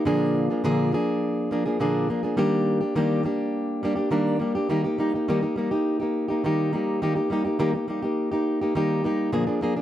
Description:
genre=pop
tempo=104 BPM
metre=4/4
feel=straight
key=Eb major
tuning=A4 = 440 Hz
part: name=fingerpicked plugged-in steel-string acoustic guitar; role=solo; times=0.0-9.8 s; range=Bb2 to Ab4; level=-22 LUFS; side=equal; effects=none
room=little or no reverb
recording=dry, close 1970s-style studio recording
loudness=-22 LUFS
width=side -12 dB against mid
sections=0.0-4.7 A section; 4.7-9.8 B section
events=none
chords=0.1 Bb7; 2.4 Ebmaj7; 4.7 Eb

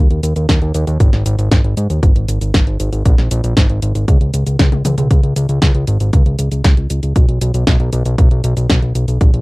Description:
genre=italo disco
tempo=117 BPM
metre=4/4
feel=straight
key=unclear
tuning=A4 = 439 Hz
part: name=fat analog bass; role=bass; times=0.0-9.4 s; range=Ab1 to Ab2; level=-15 LUFS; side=equal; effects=none
part: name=house drum kit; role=drums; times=0.1-9.4 s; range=cabasa, hi-hat, snare drum, toms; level=-19 LUFS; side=equal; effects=none
part: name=electronic kick drum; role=drums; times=0.5-9.3 s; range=none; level=-12 LUFS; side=equal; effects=none
room=little or no reverb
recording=dry, close 1970s-style studio recording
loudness=-12 LUFS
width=side -24 dB against mid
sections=0.0-5.1 A section; 5.1-9.4 B section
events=drum fill 4.6-5.1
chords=none

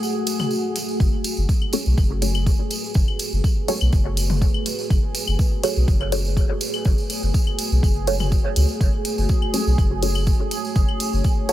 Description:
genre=dub techno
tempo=123 BPM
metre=4/4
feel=straight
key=F# minor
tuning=A4 = 441 Hz
part: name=deep dark ambient pad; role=sustained chords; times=0.0-11.5 s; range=A3 to F#5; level=-28 LUFS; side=left 1 dB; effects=chorus, built-in reverb, sidechain pumping
part: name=tambourine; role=percussion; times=0.0-11.5 s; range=none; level=-30 LUFS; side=right 3 dB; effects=none
part: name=bubbling stepped-filter texture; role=texture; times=0.0-11.5 s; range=G#4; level=-33 LUFS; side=right 6 dB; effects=chorus, built-in reverb, sidechain pumping
part: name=electronic hi-hat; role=drums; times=0.3-11.5 s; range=none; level=-26 LUFS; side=left 2 dB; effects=none
part: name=electronic toms and claves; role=percussion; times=0.4-11.0 s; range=none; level=-31 LUFS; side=left 5 dB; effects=overdrive, sidechain pumping on perc, sidechain pumping on toms, dub echo
part: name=soft dub sub bass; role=bass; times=1.0-11.2 s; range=F#1 to C#2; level=-21 LUFS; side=equal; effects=sidechain pumping
part: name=electronic kick drum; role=drums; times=1.0-11.3 s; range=none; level=-19 LUFS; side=equal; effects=none
part: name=filtered dub chord stab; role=stabs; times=1.7-11.5 s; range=F#4 to C#5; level=-28 LUFS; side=equal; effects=phaser, dub echo
room=little or no reverb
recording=faint mains hum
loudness=-18 LUFS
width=side -13 dB against mid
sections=0.0-11.5 A section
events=break 0.0-1.0; filter sweep on synth stab 0.0-11.5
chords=0.0 F#madd9

